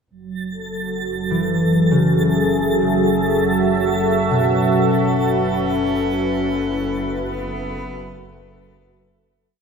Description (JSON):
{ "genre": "ambient", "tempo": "50 BPM", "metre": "4/4", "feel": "straight", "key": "F# minor", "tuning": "A4 = 444 Hz", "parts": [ { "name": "warm analog pad", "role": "sustained chords", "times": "0.1-9.6 s", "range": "F#3 to E5", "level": "-19 LUFS", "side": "right 2 dB", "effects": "chorus, shimmer reverb" }, { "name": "clear chamber double bass section", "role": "bass", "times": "0.1-9.6 s", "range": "F#1", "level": "-33 LUFS", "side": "equal", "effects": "none" }, { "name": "twinkling granular texture", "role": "texture", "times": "0.4-9.6 s", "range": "A6", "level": "-30 LUFS", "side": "right 2 dB", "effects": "built-in reverb, shimmer reverb" }, { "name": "concert harp", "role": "arpeggios", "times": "1.3-9.6 s", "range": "B2 to A4", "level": "-21 LUFS", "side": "left 3 dB", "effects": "ping-pong delay" }, { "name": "rich cello", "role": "melody", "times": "4.9-8.5 s", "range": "B3 to C#4", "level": "-24 LUFS", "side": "left 4 dB", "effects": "ping-pong delay" } ], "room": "wet plate reverb, RT60 2.9 s", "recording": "dreamy mix soaked in reverb", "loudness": "-16 LUFS", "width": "side -6 dB against mid", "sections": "0.1-9.6 A section", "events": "fade-in on double bass section 0.1-9.6; fade-out on synth texture 0.1-9.6; fade-out 4.9-9.6", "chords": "0.1 F#m9; 4.9 Asus2/F#" }